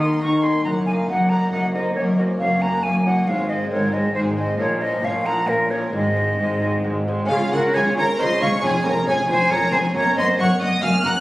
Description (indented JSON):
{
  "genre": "classical, baroque-style concerto movement with solo episodes",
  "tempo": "136 BPM",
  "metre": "3/4",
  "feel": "straight",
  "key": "Db major",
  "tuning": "A4 = 438 Hz",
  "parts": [
    { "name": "silver concert flute", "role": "melody", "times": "0.0-11.1 s", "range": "Ab4 to Db6", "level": "-22 LUFS", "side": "equal", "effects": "none" },
    { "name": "warm studio violin section", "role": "melody", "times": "0.0-11.2 s", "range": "F4 to Gb6", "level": "-27 LUFS", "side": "equal", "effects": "none" },
    { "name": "warm chamber violin section", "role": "second line", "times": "0.0-11.1 s", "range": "C4 to Gb5", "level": "-30 LUFS", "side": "equal", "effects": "none" },
    { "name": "dark chamber viola section", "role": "accompaniment", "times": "0.0-11.2 s", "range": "F3 to F4", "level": "-29 LUFS", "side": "right 1 dB", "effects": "none" },
    { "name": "lute", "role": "accompaniment", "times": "0.0-11.2 s", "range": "F2 to Db5", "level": "-31 LUFS", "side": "equal", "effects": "none" },
    { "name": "rich chamber double bass section", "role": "bass", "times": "0.0-11.1 s", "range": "F1 to Eb2", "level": "-28 LUFS", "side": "equal", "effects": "none" },
    { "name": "warm chamber cello section", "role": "bass", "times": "0.0-11.1 s", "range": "F2 to Eb3", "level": "-23 LUFS", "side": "equal", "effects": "none" }
  ],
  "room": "moderate recital hall reverb, RT60 1.4 s",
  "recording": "recorded on a phone in the room, club reverb, compression",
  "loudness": "-17 LUFS",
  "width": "side -17 dB against mid",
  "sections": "0.0-7.3 A section; 7.3-11.2 B section",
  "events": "none",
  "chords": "0.0 Eb5; 0.7 Ebm/Gb; 2.0 Gb; 3.3 Ab; 4.6 Bbm; 5.9 Ab; 7.3 Db; 8.6 Db/F; 10.0 Gb",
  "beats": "0.21 | 0.65 1.09 1.53 | 1.97 2.40 2.84 | 3.28 3.72 4.16 | 4.59 5.04 5.48 | 5.94 6.39 6.85 | 7.30 7.75 8.20 | 8.64 9.08 9.52 | 9.96 10.40 10.83"
}